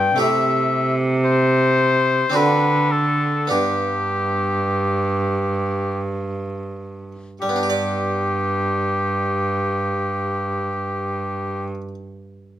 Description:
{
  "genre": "classical, baroque-style sonata movement with continuo",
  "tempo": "43-58 BPM",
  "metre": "3/4",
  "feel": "rubato",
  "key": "G major",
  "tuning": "A4 = 439 Hz",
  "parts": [
    { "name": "clear oboe", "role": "melody", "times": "0.0-11.7 s", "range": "G4 to G5", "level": "-21 LUFS", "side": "left 3 dB", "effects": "none" },
    { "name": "harpsichord", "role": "accompaniment", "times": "0.0-11.9 s", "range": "G2 to D5", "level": "-25 LUFS", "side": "right 2 dB", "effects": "none" },
    { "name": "rich cello", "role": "bass", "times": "0.0-11.7 s", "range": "G2 to D3", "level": "-22 LUFS", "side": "right 2 dB", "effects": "none" }
  ],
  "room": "light reverb",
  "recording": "none",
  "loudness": "-18 LUFS",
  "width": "side -12 dB against mid",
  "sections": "0.0-7.4 A section; 7.4-11.6 B section",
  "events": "slowing down 0.0-7.4",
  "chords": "0.2 Am7/C; 2.3 D7; 3.5 G"
}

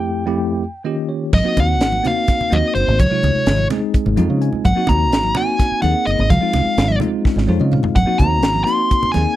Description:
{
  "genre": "electric jazz fusion",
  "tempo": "253 BPM (eighths)",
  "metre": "7/8",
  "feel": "straight",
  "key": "unclear",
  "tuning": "A4 = 440 Hz",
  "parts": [
    { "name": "dark smooth lead guitar", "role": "melody", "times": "0.0-9.4 s", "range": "C5 to C6", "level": "-19 LUFS", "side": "equal", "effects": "overdrive" },
    { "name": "bell-like tine electric piano", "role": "accompaniment", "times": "0.0-9.4 s", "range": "F2 to Ab5", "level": "-21 LUFS", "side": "left 1 dB", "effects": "medium stereo tremolo" },
    { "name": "fingered electric bass", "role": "bass", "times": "1.3-9.2 s", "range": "Gb1 to Db3", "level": "-18 LUFS", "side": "equal", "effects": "none" },
    { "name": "tight funk drum kit", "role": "drums", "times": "1.3-9.3 s", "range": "crash cymbal, hi-hat, kick drum, snare drum, toms", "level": "-18 LUFS", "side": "equal", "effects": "none" },
    { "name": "congas", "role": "percussion", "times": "1.3-9.3 s", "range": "none", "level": "-23 LUFS", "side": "right 3 dB", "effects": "none" }
  ],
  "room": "little or no reverb",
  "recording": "dry, close 1970s-style studio recording",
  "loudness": "-14 LUFS",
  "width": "side -14 dB against mid",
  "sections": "0.0-1.3 A section; 1.3-9.4 B section",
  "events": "break 0.0-1.3; tine electric piano fill 0.6-1.3, 3.9-4.7, 7.3-8.0; drum fill 7.3-8.0",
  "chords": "0.0 Fmaj9; 0.6 Eb7; 1.3 Ab7; 3.0 Dbmaj9; 4.7 Ab7; 6.3 Dbmaj9; 8.0 Ab7"
}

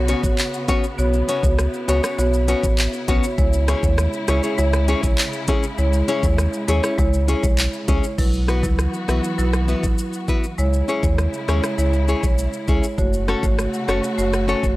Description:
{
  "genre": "dancehall",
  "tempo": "100 BPM",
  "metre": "4/4",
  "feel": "straight",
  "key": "C# minor",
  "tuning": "A4 = 439 Hz",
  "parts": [
    { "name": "marimba with medium mallets", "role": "accompaniment", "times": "0.0-14.8 s", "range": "F#3 to C#5", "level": "-24 LUFS", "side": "right 1 dB", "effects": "none" },
    { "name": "warm studio string section", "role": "sustained chords", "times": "0.0-14.8 s", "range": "C#3 to F#4", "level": "-31 LUFS", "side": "left 1 dB", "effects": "sidechain pumping" },
    { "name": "sub bass with octave", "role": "bass", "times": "0.0-14.8 s", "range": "F#1 to D#2", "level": "-20 LUFS", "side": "equal", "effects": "none" },
    { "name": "nylon-string guitar", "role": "arpeggios", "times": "0.1-14.6 s", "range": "B3 to C#5", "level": "-24 LUFS", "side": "left 3 dB", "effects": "none" },
    { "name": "island pop drum kit", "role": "drums", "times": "0.1-14.8 s", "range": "crash cymbal, handclaps, hi-hat, kick drum, rim click, shaker", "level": "-22 LUFS", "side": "equal", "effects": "none" },
    { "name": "bongos", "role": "percussion", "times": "0.1-8.0 s", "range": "none", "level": "-30 LUFS", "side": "right 1 dB", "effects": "none" }
  ],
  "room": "small room ambience",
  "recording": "dry, gritty hardware recording, transformer saturation",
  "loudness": "-17 LUFS",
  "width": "side -18 dB against mid",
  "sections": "0.0-8.2 A section; 8.2-14.8 B section",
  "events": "none",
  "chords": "0.0 Bsus2; 3.4 C#m; 8.2 Bsus4; 10.6 C#m; 13.0 F#m"
}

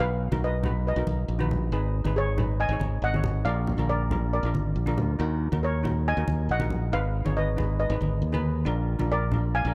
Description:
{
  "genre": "calypso",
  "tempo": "138 BPM",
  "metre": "4/4",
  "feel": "straight",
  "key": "unclear",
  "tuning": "A4 = 439 Hz",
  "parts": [
    { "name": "steel pan", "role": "melody", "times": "0.0-9.7 s", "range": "Ab4 to Ab5", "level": "-32 LUFS", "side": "equal", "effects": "none" },
    { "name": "steel pan", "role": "accompaniment", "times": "0.0-9.7 s", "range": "D4 to Db5", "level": "-36 LUFS", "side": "equal", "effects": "none" },
    { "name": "modern bright fingered electric bass", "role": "bass", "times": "0.0-9.7 s", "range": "Ab1 to Eb2", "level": "-29 LUFS", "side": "equal", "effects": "none" },
    { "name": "congas", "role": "percussion", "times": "0.3-9.4 s", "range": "none", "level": "-34 LUFS", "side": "equal", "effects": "none" }
  ],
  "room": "small room ambience",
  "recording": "dark, warm production",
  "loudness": "-26 LUFS",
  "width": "mono",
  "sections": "0.0-9.7 A section",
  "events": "none",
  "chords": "0.0 B; 1.7 Abm7; 3.5 Bb; 5.2 Ebm7; 6.9 Abm; 8.7 Bb"
}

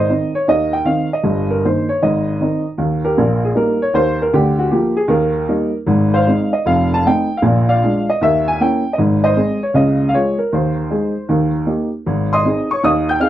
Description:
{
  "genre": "jazz, stride piano",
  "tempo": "155 BPM",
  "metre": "4/4",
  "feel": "swing 66% on 8ths",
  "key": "Ab major",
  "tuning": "A4 = 439 Hz",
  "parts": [
    { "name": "warm upright piano", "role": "solo", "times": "0.0-13.3 s", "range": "F1 to G6", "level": "-14 LUFS", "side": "equal", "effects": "none" }
  ],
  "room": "moderate booth ambience, RT60 0.2 s",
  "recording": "dry, close 1970s-style studio recording",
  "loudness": "-14 LUFS",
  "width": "side -12 dB against mid",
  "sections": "0.0-12.1 A section; 12.1-13.3 A section",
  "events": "none",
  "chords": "0.0 Ab; 1.2 Eb/G; 2.0 Ab; 2.8 Eb; 4.3 Bb/D; 5.1 Eb; 5.9 Ab; 6.7 F7; 7.4 Bb7; 8.2 Eb5; 9.0 Ab; 9.7 Db; 10.5 Ab/Eb; 11.3 Eb; 12.1 Ab"
}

